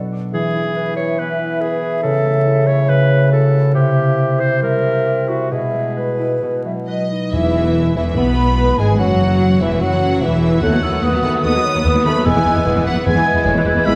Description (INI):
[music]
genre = classical, dramatic, fast romantic movement for symphony orchestra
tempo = 130-151 BPM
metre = 4/4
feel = rubato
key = E major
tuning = A4 = 440 Hz
[part]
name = clear clarinet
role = second line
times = 0.0-14.0 s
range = E4 to E5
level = -26 LUFS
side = equal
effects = none
[part]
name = mellow hollow silver concert flute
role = second line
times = 0.0-14.0 s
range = B4 to G#6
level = -25 LUFS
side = equal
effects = none
[part]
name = warm bassoon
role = accompaniment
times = 0.0-14.0 s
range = B2 to B3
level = -26 LUFS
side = equal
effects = none
[part]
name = concert harp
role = arpeggios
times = 0.0-14.0 s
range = G#2 to E5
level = -22 LUFS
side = equal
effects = none
[part]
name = clear symphonic violin section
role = melody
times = 6.9-14.0 s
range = D#5 to D#6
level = -27 LUFS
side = equal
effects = none
[part]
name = rich studio violin section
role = second line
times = 7.3-14.0 s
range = E4 to B4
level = -29 LUFS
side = equal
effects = none
[part]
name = clear symphonic viola section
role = accompaniment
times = 7.3-14.0 s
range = D#3 to B3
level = -26 LUFS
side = equal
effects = none
[part]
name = mellow French horn section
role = sustained chords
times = 7.3-14.0 s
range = E3 to A4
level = -23 LUFS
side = equal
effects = none
[part]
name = rich symphonic cello section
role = bass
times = 7.3-13.9 s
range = D#2 to B2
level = -23 LUFS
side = equal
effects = none
[part]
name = rich symphonic double bass section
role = bass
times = 7.3-13.9 s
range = E1 to D#2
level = -24 LUFS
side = equal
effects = none
[part]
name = timpani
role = percussion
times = 7.3-7.9 s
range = E2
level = -29 LUFS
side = equal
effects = none
[sound]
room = wet recital hall reverb, RT60 1.7 s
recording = dark, warm production, vinyl crackle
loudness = -16 LUFS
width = mono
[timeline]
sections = 0.0-7.3 A section; 7.3-14.0 B section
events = none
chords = 0.3 E; 2.0 A/C#; 2.9 F#m7/C#; 3.8 C7; 5.5 E/B; 6.4 B; 7.3 E; 9.0 F#m7; 10.6 B7/D#; 12.3 E